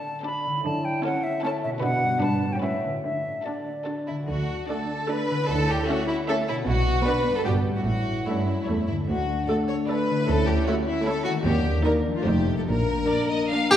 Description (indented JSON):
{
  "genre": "cinematic, playful, whimsical film cue",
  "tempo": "150 BPM",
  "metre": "3/4",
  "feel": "straight",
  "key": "D major",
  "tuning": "A4 = 440 Hz",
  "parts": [
    { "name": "rich studio violin section", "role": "melody", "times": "0.0-13.8 s", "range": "A4 to G5", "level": "-34 LUFS", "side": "left 2 dB", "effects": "none" },
    { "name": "concert flute", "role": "second line", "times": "0.0-4.1 s", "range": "D5 to B5", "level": "-28 LUFS", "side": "equal", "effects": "none" },
    { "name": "rich chamber violin section", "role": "second line", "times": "0.0-13.7 s", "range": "D4 to C#5", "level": "-28 LUFS", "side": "left 1 dB", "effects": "none" },
    { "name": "warm chamber viola section", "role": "accompaniment", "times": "0.0-13.8 s", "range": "A3 to B4", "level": "-30 LUFS", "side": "right 1 dB", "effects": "none" },
    { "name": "concert harp", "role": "arpeggios", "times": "0.0-13.8 s", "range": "G2 to D5", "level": "-32 LUFS", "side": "left 1 dB", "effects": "none" },
    { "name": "rich chamber cello section", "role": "bass", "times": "0.7-13.0 s", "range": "D2 to D3", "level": "-29 LUFS", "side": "right 1 dB", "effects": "none" },
    { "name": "rich chamber double bass section", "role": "bass", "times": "4.3-13.0 s", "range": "F1 to Eb2", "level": "-29 LUFS", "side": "right 2 dB", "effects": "none" },
    { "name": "dark French horn section", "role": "sustained chords", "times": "4.7-13.7 s", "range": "A3 to Eb4", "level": "-30 LUFS", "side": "left 3 dB", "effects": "none" },
    { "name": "harpsichord", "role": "melody", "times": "13.7-13.8 s", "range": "G4", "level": "-13 LUFS", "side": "equal", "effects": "none" }
  ],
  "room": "wet scoring stage reverb, RT60 1.6 s",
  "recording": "heard from further back in the room",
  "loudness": "-22 LUFS",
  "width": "side -10 dB against mid",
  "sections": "0.0-4.3 A section; 4.3-13.8 A section",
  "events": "none",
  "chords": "0.0 D5; 0.6 A/D; 1.8 Bm; 2.2 Gmaj7; 2.6 A69; 3.0 D; 5.5 A/D; 6.7 Bm; 7.5 Gmaj7; 7.9 A; 9.1 D; 10.3 A/D; 11.5 Ebmaj7; 12.3 F9; 12.7 Bb"
}